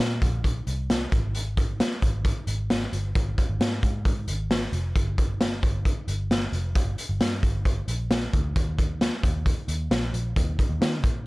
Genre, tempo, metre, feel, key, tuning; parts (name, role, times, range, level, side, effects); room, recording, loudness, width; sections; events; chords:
jangly indie pop; 133 BPM; 4/4; straight; A4 = 440 Hz
vintage muted picked electric bass; bass; 0.0-11.3 s; F1 to Eb3; -28 LUFS; equal
raw garage drum kit; drums; 0.2-11.1 s; hi-hat, kick drum, snare drum; -24 LUFS; equal
little or no reverb; dark, warm production; -23 LUFS; side -22 dB against mid
0.0-11.3 A section